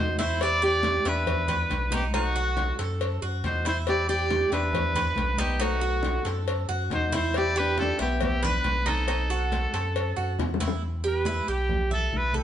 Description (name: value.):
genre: latin, Cuban son and guajira.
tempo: 138 BPM.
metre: 4/4.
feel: straight.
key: E minor.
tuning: A4 = 440 Hz.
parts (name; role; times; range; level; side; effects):
brilliant trumpet; melody; 0.0-12.4 s; F#4 to D5; -28 LUFS; equal; none.
flamenco guitar; second line; 0.0-10.4 s; A3 to G4; -32 LUFS; left 2 dB; none.
Cuban tres; arpeggios; 0.0-12.4 s; D#4 to E5; -31 LUFS; right 4 dB; none.
warm sub bass; bass; 0.0-12.4 s; B1 to F#2; -29 LUFS; equal; none.
congas; percussion; 0.2-12.4 s; none; -35 LUFS; left 1 dB; none.
cowbell and bongos; percussion; 0.2-10.8 s; none; -34 LUFS; left 5 dB; none.
room: moderate stone room reverb, RT60 1.0 s.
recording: band playing live in one room, nothing above 10.4 kHz.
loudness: -23 LUFS.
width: side -10 dB against mid.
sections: 0.0-10.8 A section; 10.8-12.4 B section.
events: drum fill 10.4-10.8; trumpet solo 10.8-12.4.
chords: 0.4 Em7; 2.1 B7; 3.9 Em7; 5.6 B7(no3); 7.3 Em7; 9.1 B7b9; 10.8 Em.